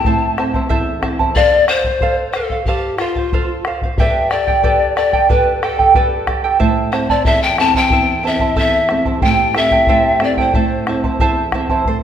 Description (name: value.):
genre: andean folk, Andean ensemble.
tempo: 92 BPM.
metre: 2/4.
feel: straight.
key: A minor.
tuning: A4 = 440 Hz.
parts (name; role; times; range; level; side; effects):
breathy pan flute; melody; 0.0-11.3 s; F4 to A5; -16 LUFS; left 4 dB; none.
charango; accompaniment; 0.0-12.0 s; E4 to A5; -18 LUFS; right 5 dB; none.
nylon-string guitar; accompaniment; 0.0-1.3, 6.6-12.0 s; E2 to A4; -20 LUFS; right 2 dB; none.
bombo; percussion; 0.0-12.0 s; none; -19 LUFS; left 1 dB; none.
room: wet recital hall reverb, RT60 1.5 s.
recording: none.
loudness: -13 LUFS.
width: side -9 dB against mid.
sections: 0.0-1.4 A section; 1.4-11.9 A section.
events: none.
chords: 0.1 Am; 1.4 F/A; 4.0 G; 6.6 Am; 9.2 C/A; 10.5 Am.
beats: | 0.05 0.71 | 1.36 2.02 | 2.67 3.33 | 3.98 4.64 | 5.29 5.95 | 6.61 7.26 | 7.92 8.57 | 9.23 9.89 | 10.55 11.21 | 11.87.